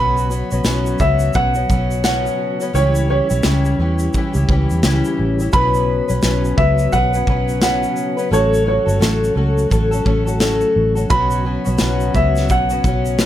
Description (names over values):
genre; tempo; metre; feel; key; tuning
acoustic pop; 86 BPM; 4/4; swing 60% on 16ths; unclear; A4 = 440 Hz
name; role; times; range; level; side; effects
dark upright piano; melody; 0.0-13.3 s; C#5 to B5; -20 LUFS; right 1 dB; none
fingerpicked twelve-string acoustic guitar; accompaniment; 0.0-13.3 s; B2 to B4; -21 LUFS; left 4 dB; none
mellow tonewheel organ; sustained chords; 0.0-13.3 s; C#3 to G4; -26 LUFS; right 4 dB; chorus vibrato, stopped rotary speaker
vintage muted fingered electric bass; bass; 0.0-13.3 s; G1 to E2; -19 LUFS; equal; none
modern studio drum kit; drums; 0.2-13.3 s; kick drum, shaker, snare drum; -20 LUFS; equal; none
room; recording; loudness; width
little or no reverb; none; -14 LUFS; side -12 dB against mid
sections
0.0-13.3 A section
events
none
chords
0.0 Bsus2; 2.7 C#dim; 5.5 Bsus2; 8.3 F#m; 11.1 Bsus2